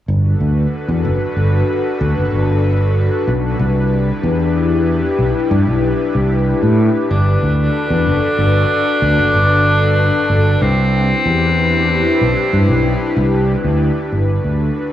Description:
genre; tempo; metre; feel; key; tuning
progressive instrumental, progressive; 188 BPM (eighths); 11/8; straight; G major; A4 = 440 Hz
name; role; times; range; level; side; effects
airy breathy pad; accompaniment; 0.3-14.9 s; D4 to B4; -18 LUFS; left 1 dB; chorus
fretless electric bass; bass; 0.1-14.7 s; F#1 to A2; -15 LUFS; equal; none
edgy alto saxophone; second line; 7.1-13.8 s; C4 to D4; -17 LUFS; left 1 dB; none
room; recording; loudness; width
light reverb, small room ambience; home recording on cassette, small room reverb; -13 LUFS; side -12 dB against mid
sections
0.1-14.1 A section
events
none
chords
0.1 Gmaj9; 3.6 Cmaj9; 7.1 Gmaj9; 10.6 Cmaj9; 14.1 Gmaj9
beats
| 0.08 0.40 0.72 1.04 1.36 1.68 2.00 2.32 2.64 2.96 3.28 | 3.60 3.92 4.24 4.56 4.88 5.20 5.51 5.83 6.15 6.47 6.79 | 7.11 7.43 7.75 8.07 8.39 8.71 9.03 9.34 9.66 9.98 10.30 | 10.62 10.94 11.26 11.57 11.89 12.21 12.53 12.85 13.17 13.49 13.81 | 14.12 14.44 14.76

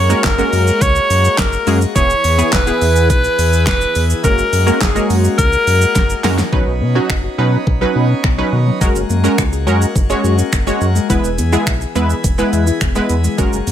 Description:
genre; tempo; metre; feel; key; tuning
dance-pop; 105 BPM; 4/4; straight; B major; A4 = 440 Hz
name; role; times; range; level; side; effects
edgy alto saxophone; melody; 0.0-6.2 s; G#4 to C#5; -16 LUFS; equal; none
pipe organ, plenum; sustained chords; 0.0-13.7 s; E3 to G#4; -24 LUFS; left 3 dB; sidechain pumping
round analog bass; bass; 0.0-13.7 s; E1 to B2; -16 LUFS; equal; sidechain pumping
funky polysynth comp; accompaniment; 0.1-13.6 s; F#3 to C#5; -18 LUFS; right 1 dB; chorus, sidechain pumping
pop drum kit; drums; 0.1-13.7 s; finger snaps, handclaps, hi-hat, kick drum, shaker, snare drum; -18 LUFS; equal; overdrive
soft round pluck; arpeggios; 6.5-13.7 s; D#3 to G#5; -25 LUFS; left 7 dB; chorus, sidechain pumping, ping-pong delay
room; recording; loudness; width
little or no reverb; none; -12 LUFS; side -10 dB against mid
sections
0.0-6.5 A section; 6.5-13.7 B section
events
drum fill 6.0-6.5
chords
0.0 F#add9; 2.0 E; 4.2 F#add9; 6.5 Badd9; 8.8 F#add9; 11.1 E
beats
0.24 0.81 1.38 | 1.96 2.53 3.10 3.67 | 4.24 4.81 5.38 5.96 | 6.53 7.10 7.67 8.24 | 8.81 9.38 9.96 10.53 | 11.10 11.67 12.24 12.81 | 13.38

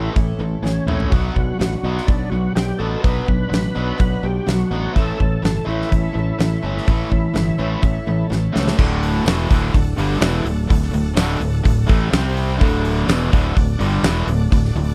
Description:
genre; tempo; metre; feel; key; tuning
classic rock; 125 BPM; 4/4; straight; D major; A4 = 440 Hz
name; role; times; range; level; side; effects
overdriven tonewheel organ; melody; 0.0-8.3 s; C#4 to B4; -30 LUFS; equal; slow rotary speaker, chorus vibrato
picked twelve-string acoustic guitar; accompaniment; 0.0-8.8 s; A2 to A4; -34 LUFS; equal; none
distorted electric guitar; riff; 0.0-14.9 s; D2 to C4; -25 LUFS; equal; overdrive
overdriven fingered electric bass; bass; 0.0-14.9 s; D1 to C#2; -24 LUFS; equal; none
huge arena drum kit; drums; 0.2-14.9 s; crash cymbal, hi-hat, kick drum, snare drum, toms; -21 LUFS; equal; none
bright tonewheel organ; sustained chords; 1.1-14.9 s; G3 to F5; -37 LUFS; equal; none
crunchy overdriven guitar; riff; 8.8-14.9 s; D2 to C4; -27 LUFS; equal; none
tambourine; percussion; 9.3-14.2 s; none; -40 LUFS; equal; none
room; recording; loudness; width
little or no reverb; dry, close 1970s-style studio recording; -19 LUFS; mono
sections
0.0-8.8 A section; 8.8-14.9 B section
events
drum fill 0.6-1.1, 8.3-8.8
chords
0.0 A; 1.1 Bm; 5.0 A; 8.8 D; 12.1 C5; 12.6 D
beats
0.16 0.64 | 1.12 1.60 2.08 2.56 | 3.04 3.52 4.00 4.48 | 4.96 5.43 5.92 6.39 | 6.87 7.35 7.83 8.31 | 8.79 9.26 9.74 10.22 | 10.70 11.17 11.65 12.13 | 12.61 13.08 13.56 14.04 | 14.52

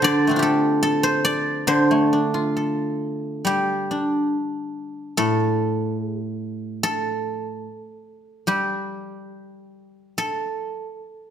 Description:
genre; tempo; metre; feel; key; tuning
chinese traditional, Chinese solo plucked strings; 66-75 BPM; 2/4; rubato; D yu mode; A4 = 439 Hz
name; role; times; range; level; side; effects
guzheng; solo; 0.0-11.3 s; A2 to G5; -20 LUFS; equal; none
room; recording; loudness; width
moderate recital hall reverb, RT60 1.3 s; none; -20 LUFS; side -9 dB against mid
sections
0.0-3.5 A section; 3.5-11.3 B section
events
none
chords
none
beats
| 0.04 0.84 | 1.68 2.56 | 3.46 4.33 | 5.18 6.01 | 6.83 7.65 | 8.48 9.31 | 10.18 11.04

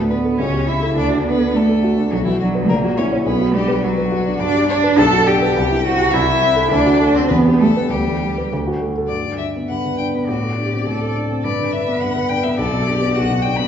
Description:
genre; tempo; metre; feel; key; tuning
quick classical-period movement for piano trio; 104 BPM; 2/4; straight; G major from 4.4 s; A4 = 440 Hz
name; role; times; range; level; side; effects
warm cello; second line; 0.0-13.7 s; E3 to B4; -18 LUFS; right 2 dB; none
dark concert grand piano; accompaniment; 0.0-13.7 s; A#1 to C#5; -19 LUFS; left 1 dB; none
rich violin; melody; 0.1-13.7 s; E4 to B5; -24 LUFS; left 8 dB; none
room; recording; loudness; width
wet recital hall reverb, RT60 1.7 s; heard from further back in the room, nothing above 7.9 kHz; -15 LUFS; side -8 dB against mid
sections
0.0-9.1 A section; 9.1-13.7 B section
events
none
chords
0.4 A7/C#; 1.0 D; 2.1 Bm; 2.7 F#7/A#; 3.3 Bm; 4.4 G; 5.0 Bm; 5.6 C; 6.1 Am/C; 6.7 D; 7.3 Em; 7.9 G/D; 8.5 D; 9.1 G; 10.3 D5/A; 11.4 G; 12.6 Bm7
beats
0.38 | 0.96 1.54 | 2.12 2.69 | 3.25 3.83 | 4.40 4.97 | 5.55 6.13 | 6.71 7.30 | 7.91 8.51 | 9.11 9.70 | 10.28 10.86 | 11.44 12.02 | 12.59 13.16

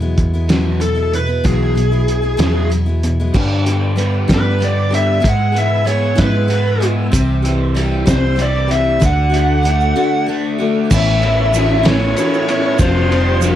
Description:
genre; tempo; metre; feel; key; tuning
folk rock and heartland rock; 64 BPM (dotted quarters); 6/8; straight; unclear; A4 = 440 Hz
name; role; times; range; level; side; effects
picked steel-string acoustic guitar; accompaniment; 0.0-13.6 s; E2 to G#4; -21 LUFS; left 4 dB; none
crunchy overdriven guitar; riff; 0.0-13.6 s; E2 to F4; -21 LUFS; right 2 dB; phaser
hollow-body short-scale picked electric bass; bass; 0.0-13.6 s; F1 to G#2; -17 LUFS; equal; none
cloth-damped thuddy drum kit; drums; 0.2-13.6 s; crash cymbal, hi-hat, kick drum, ride cymbal, snare drum; -18 LUFS; equal; none
bluesy overdriven lead guitar; melody; 0.8-13.4 s; G#4 to F#5; -18 LUFS; equal; distortion
tonewheel organ; sustained chords; 3.3-13.6 s; G4 to E6; -31 LUFS; right 1 dB; slow rotary speaker, chorus vibrato
tube shaker; percussion; 7.1-13.6 s; none; -31 LUFS; right 14 dB; none
room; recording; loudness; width
light reverb; dark, warm production; -13 LUFS; side -11 dB against mid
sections
0.0-3.3 A section; 3.3-10.9 B section; 10.9-13.6 C section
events
break 10.0-10.9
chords
0.0 Eadd9; 3.3 G; 5.2 E/G#; 7.1 C; 9.0 D; 10.9 Aadd9; 12.8 Fsus2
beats
0.50 | 1.45 2.40 | 3.35 4.29 | 5.24 6.18 | 7.13 8.08 | 9.02 9.96 | 10.91 11.85 | 12.80

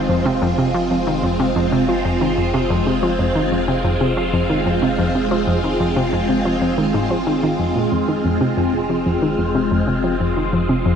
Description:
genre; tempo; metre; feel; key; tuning
ambient, sequencer-driven space music; 92 BPM; 4/4; straight; F minor; A4 = 441 Hz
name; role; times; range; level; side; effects
phased string machine; sustained chords; 0.0-11.0 s; Ab3 to F4; -19 LUFS; equal; ensemble chorus, phaser
analog pluck; riff; 0.0-11.0 s; F2 to F3; -19 LUFS; equal; chorus, analog delay
warm sub bass; bass; 0.0-11.0 s; F1; -30 LUFS; equal; none
room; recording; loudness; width
wet huge ambient reverb, RT60 8.0 s; in a vast, echoing space; -16 LUFS; side -7 dB against mid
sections
0.0-11.0 A section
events
none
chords
0.0 Fm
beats
| 0.09 0.75 1.40 2.05 | 2.70 3.35 4.01 4.66 | 5.31 5.96 6.62 7.27 | 7.92 8.57 9.22 9.88 | 10.53

